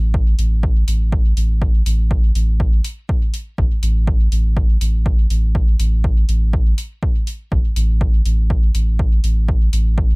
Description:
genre	dub techno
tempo	122 BPM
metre	4/4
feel	straight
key	unclear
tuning	A4 = 439 Hz
part	warm sub bass	bass	0.0-10.2 s	A1	-16 LUFS	equal	sidechain pumping
part	electronic kick drum	drums	0.1-10.1 s	none	-17 LUFS	equal	none
part	electronic hi-hat	drums	0.4-9.8 s	none	-31 LUFS	left 1 dB	none
room	little or no reverb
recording	echo-heavy mix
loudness	-14 LUFS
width	side -31 dB against mid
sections	0.0-10.2 A section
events	none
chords	none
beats	0.14 0.63 1.12 | 1.62 2.11 2.60 3.09 | 3.58 4.08 4.57 5.06 | 5.55 6.04 6.53 7.03 | 7.52 8.01 8.50 8.99 | 9.48 9.98

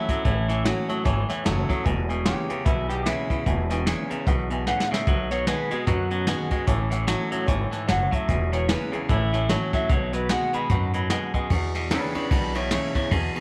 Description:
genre	rockabilly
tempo	149 BPM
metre	4/4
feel	swing 60% on 8ths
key	E major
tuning	A4 = 438 Hz
part	electric guitar through a small old amp	melody	0.0-13.4 s	D4 to B5	-31 LUFS	equal	tape echo
part	picked steel-string acoustic guitar	accompaniment	0.0-13.4 s	E2 to F#4	-35 LUFS	equal	none
part	twangy electric guitar	riff	0.0-13.4 s	E2 to G#3	-31 LUFS	equal	none
part	honky-tonk upright piano	accompaniment	0.1-11.4 s	B4 to B5	-38 LUFS	equal	none
part	upright bass	bass	0.1-13.4 s	E1 to F#2	-29 LUFS	equal	none
part	jazz brush drum kit	drums	0.1-13.4 s	hi-hat, kick drum, ride cymbal, snare drum	-30 LUFS	equal	none
room	small room ambience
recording	none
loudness	-24 LUFS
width	mono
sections	0.0-11.5 A section; 11.5-13.4 A section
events	drum fill 4.7-5.1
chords	0.0 E6; 5.1 B6; 6.7 A6; 8.3 E6; 9.1 A6; 9.9 B6; 11.5 E6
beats	| 0.25 0.65 1.06 1.46 | 1.86 2.26 2.66 3.06 | 3.46 3.87 4.27 4.67 | 5.07 5.47 5.88 6.28 | 6.68 7.08 7.48 7.88 | 8.29 8.69 9.09 9.49 | 9.89 10.30 10.70 11.10 | 11.51 11.91 12.31 12.71 | 13.12

